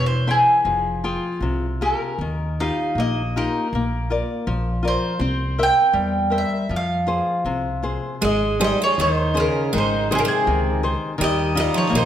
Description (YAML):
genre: fado-style ballad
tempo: 80 BPM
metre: 2/4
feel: rubato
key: F minor, Ab major from 8.2 s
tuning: A4 = 441 Hz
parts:
  - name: mandolin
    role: melody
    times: 0.0-12.1 s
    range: Ab4 to G5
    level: -22 LUFS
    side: right 1 dB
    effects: none
  - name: nylon-string guitar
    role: accompaniment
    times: 0.0-12.1 s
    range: C3 to G5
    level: -24 LUFS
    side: left 3 dB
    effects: none
  - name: upright bass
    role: bass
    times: 0.0-12.1 s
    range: E1 to F2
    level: -26 LUFS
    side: equal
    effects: none
  - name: picked twelve-string acoustic guitar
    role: second line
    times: 8.2-12.1 s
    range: C3 to Ab3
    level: -22 LUFS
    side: right 4 dB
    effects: none
room: wet recital hall reverb, RT60 1.5 s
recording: none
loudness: -18 LUFS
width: side -10 dB against mid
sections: 0.0-8.2 A section; 8.2-12.1 B section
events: none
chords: 0.0 C; 0.7 Fmadd9; 2.2 Ebadd9; 3.7 Bb; 5.2 C7; 6.7 Fm; 8.2 Ab; 11.2 Ebadd9